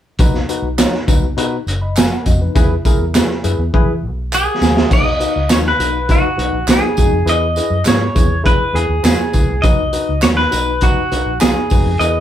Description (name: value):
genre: uptempo 1960s-style soul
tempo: 102 BPM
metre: 4/4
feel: straight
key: B major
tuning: A4 = 440 Hz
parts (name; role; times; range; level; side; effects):
- tine electric piano; accompaniment; 0.2-12.2 s; D#4 to B5; -22 LUFS; left 4 dB; medium stereo tremolo
- vintage muted fingered electric bass; bass; 0.2-12.2 s; F#1 to E3; -20 LUFS; equal; none
- crunchy breakbeat drum kit; drums; 0.2-12.1 s; crash cymbal, hi-hat, kick drum, snare drum; -15 LUFS; right 1 dB; none
- tambourine and handclaps; percussion; 0.2-12.1 s; none; -27 LUFS; right 2 dB; none
- clean electric guitar; melody; 4.3-12.2 s; F#4 to D#5; -17 LUFS; equal; none
room: moderate studio reverb, RT60 0.6 s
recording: band playing live in one room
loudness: -12 LUFS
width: side -10 dB against mid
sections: 0.2-4.9 A section; 4.9-12.2 B section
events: drum fill 3.7-4.9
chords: 0.2 B; 2.6 E; 4.9 B; 7.3 E; 9.6 B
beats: | 0.19 0.78 1.37 1.96 | 2.55 3.14 3.73 4.32 | 4.91 5.50 6.09 6.68 | 7.28 7.87 8.46 9.05 | 9.64 10.23 10.82 11.41 | 12.00